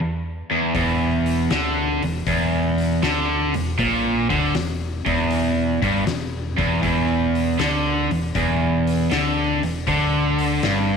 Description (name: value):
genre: blues rock power trio and southern rock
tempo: 79 BPM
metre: 4/4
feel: swing 68% on 8ths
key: E minor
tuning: A4 = 441 Hz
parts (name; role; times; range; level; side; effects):
- crunchy overdriven guitar; riff; 0.0-11.0 s; E2 to D3; -20 LUFS; equal; spring reverb
- hollow-body short-scale fingered electric bass; bass; 0.7-11.0 s; E1 to D2; -26 LUFS; equal; none
- oversized low-tuned drum kit; drums; 0.7-10.9 s; hi-hat, kick drum, snare drum; -29 LUFS; left 5 dB; none
room: small room ambience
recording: 1960s-style stereo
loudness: -18 LUFS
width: side -6 dB against mid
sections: 0.0-11.0 A section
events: none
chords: none